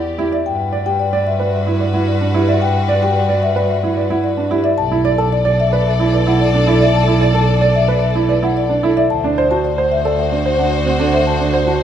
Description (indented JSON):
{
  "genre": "classical, minimalist pattern music",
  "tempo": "111 BPM",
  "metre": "4/4",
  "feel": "straight",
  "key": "unclear",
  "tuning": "A4 = 441 Hz",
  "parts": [
    { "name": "marimba with soft mallets", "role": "melody", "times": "0.0-11.8 s", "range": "G4 to A5", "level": "-20 LUFS", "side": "left 8 dB", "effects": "none" },
    { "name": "rich chamber string section", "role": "sustained chords", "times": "0.0-11.8 s", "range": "F#4 to D5", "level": "-23 LUFS", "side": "left 2 dB", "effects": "none" },
    { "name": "rich double bass", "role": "bass", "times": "0.0-11.8 s", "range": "B1 to G2", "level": "-18 LUFS", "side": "right 1 dB", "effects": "none" },
    { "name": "dark grand piano", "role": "arpeggios", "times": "0.2-11.8 s", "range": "C4 to D5", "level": "-18 LUFS", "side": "right 5 dB", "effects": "none" }
  ],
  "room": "moderate scoring stage reverb, RT60 1.9 s",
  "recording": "none",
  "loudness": "-13 LUFS",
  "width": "side -9 dB against mid",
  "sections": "0.0-11.8 A section",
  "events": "none",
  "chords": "0.5 Gmaj7; 4.8 Bm7; 9.1 D7"
}